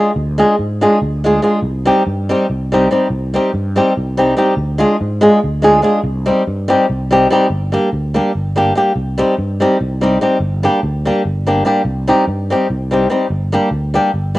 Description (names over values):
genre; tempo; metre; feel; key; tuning
balkan folk, Balkan wedding band; 288 BPM (eighths); 7/8; straight; C minor, G minor from 7.5 s; A4 = 440 Hz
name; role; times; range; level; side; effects
flamenco guitar; accompaniment; 0.0-14.4 s; G3 to Ab4; -13 LUFS; equal; cassette tape, plate reverb
sustaining fretless electric bass; bass; 0.2-14.4 s; G1 to Ab2; -19 LUFS; equal; none
room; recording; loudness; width
moderate small room reverb, RT60 0.5 s; home recording on cassette; -12 LUFS; side -18 dB against mid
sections
0.0-7.5 A section; 7.5-14.4 B section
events
speeding up 0.0-14.4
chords
0.0 Ddim; 1.6 Cm; 4.6 Ddim; 6.0 Cm; 7.5 Gm; 9.0 Cm; 10.4 Gm; 11.9 Cm; 13.3 Gm